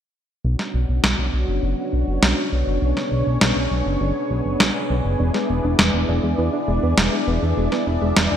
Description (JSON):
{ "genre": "synthwave", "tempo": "101 BPM", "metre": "4/4", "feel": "straight", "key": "B dorian", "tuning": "A4 = 441 Hz", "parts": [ { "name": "string machine, full ensemble", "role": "sustained chords", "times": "0.4-8.4 s", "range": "B3 to D5", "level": "-23 LUFS", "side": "equal", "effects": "ensemble chorus" }, { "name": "chorused synth bass", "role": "bass", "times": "0.4-8.4 s", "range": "E1 to E2", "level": "-21 LUFS", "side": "equal", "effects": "none" }, { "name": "electronic snare drum", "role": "drums", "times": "0.6-8.3 s", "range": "none", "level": "-21 LUFS", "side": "equal", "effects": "gated reverb" }, { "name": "soft round pluck", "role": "arpeggios", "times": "5.2-8.4 s", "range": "G#3 to D4", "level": "-26 LUFS", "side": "equal", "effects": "chorus, digital delay" } ], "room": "moderate plate reverb, RT60 2.2 s", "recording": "bright 1980s-style digital production", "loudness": "-18 LUFS", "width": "side -9 dB against mid", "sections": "0.4-8.4 A section", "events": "filter sweep on analog synth bass 0.4-8.4; filter sweep on string machine 0.4-8.4", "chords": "0.4 Bmadd9; 5.2 E7" }